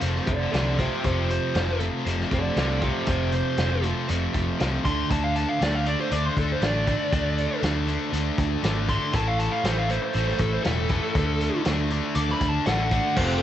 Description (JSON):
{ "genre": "quiet-loud alternative rock", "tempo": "119 BPM", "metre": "4/4", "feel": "straight", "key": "unclear", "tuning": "A4 = 440 Hz", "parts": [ { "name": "twelve-string electric guitar", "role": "arpeggios", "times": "0.0-5.1 s", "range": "F2 to F4", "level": "-32 LUFS", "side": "right 3 dB", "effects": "wide subtle chorus" }, { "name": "high-gain distorted guitar", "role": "riff", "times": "0.0-13.4 s", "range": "F2 to D4", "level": "-29 LUFS", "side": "left 7 dB", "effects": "distortion" }, { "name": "overdriven electric guitar", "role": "riff", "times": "0.0-13.4 s", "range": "F2 to D4", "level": "-32 LUFS", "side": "right 11 dB", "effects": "none" }, { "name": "picked electric bass", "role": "bass", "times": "0.0-13.4 s", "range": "E1 to D2", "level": "-27 LUFS", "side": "equal", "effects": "none" }, { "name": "loose indie drum kit", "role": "drums", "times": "0.0-13.3 s", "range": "crash cymbal, hi-hat, kick drum, snare drum", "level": "-30 LUFS", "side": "equal", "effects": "none" }, { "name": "dark smooth lead guitar", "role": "melody", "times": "0.3-13.4 s", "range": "C4 to D6", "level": "-28 LUFS", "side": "right 1 dB", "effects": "overdrive, cassette tape" }, { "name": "string machine, violas", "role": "sustained chords", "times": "13.2-13.4 s", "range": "A4 to C6", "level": "-33 LUFS", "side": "left 1 dB", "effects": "ensemble chorus" }, { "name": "distorted electric guitar", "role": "riff", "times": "13.2-13.4 s", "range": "F3 to F4", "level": "-30 LUFS", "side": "right 1 dB", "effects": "overdrive" } ], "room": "small room reverb", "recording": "home recording on cassette, nothing above 8.0 kHz", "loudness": "-22 LUFS", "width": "side -11 dB against mid", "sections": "0.0-13.2 A section", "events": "lead electric guitar solo 0.0-13.2", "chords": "0.0 F; 4.8 D5; 9.1 A5; 11.2 D5", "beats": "0.02 0.53 | 1.04 1.55 2.06 2.56 | 3.07 3.58 4.09 4.59 | 5.10 5.61 6.11 6.62 | 7.12 7.63 8.13 8.64 | 9.14 9.65 10.15 10.65 | 11.16 11.66 12.16 12.66 | 13.16" }